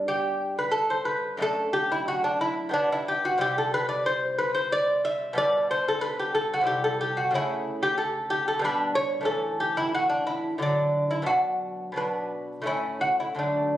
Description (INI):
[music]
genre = classical, baroque-style dance for lute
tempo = 91 BPM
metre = 3/4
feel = rubato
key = G major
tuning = A4 = 440 Hz
[part]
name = lute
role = solo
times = 0.0-13.8 s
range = F#2 to E5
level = -24 LUFS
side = equal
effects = none
[sound]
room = moderate recital hall reverb, RT60 1.6 s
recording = recorded on a phone in the room, studio reverb, compression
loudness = -24 LUFS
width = side -13 dB against mid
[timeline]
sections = 0.0-13.8 A section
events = none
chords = 0.0 G; 1.4 D/F#; 2.7 G; 3.4 C; 5.4 G/B; 6.7 C; 7.3 A/C#; 8.6 G/B; 9.3 A; 10.6 D; 11.3 Bm; 12.7 A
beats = 0.07 0.74 | 1.42 2.08 2.74 | 3.40 4.06 4.73 | 5.39 6.04 6.69 | 7.34 7.99 8.64 | 9.29 9.95 10.62 | 11.29 11.99 12.68 | 13.39